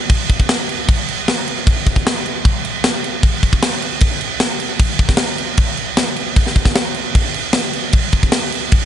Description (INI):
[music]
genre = rock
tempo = 153 BPM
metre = 4/4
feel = straight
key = none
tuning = none
[part]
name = tight metal drum kit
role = drums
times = 0.1-8.8 s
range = crash cymbal, kick drum, snare drum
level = -14 LUFS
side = equal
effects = none
[sound]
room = light reverb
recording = nothing above 10.9 kHz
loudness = -14 LUFS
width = side -10 dB against mid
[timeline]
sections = 0.0-8.9 A section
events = none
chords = none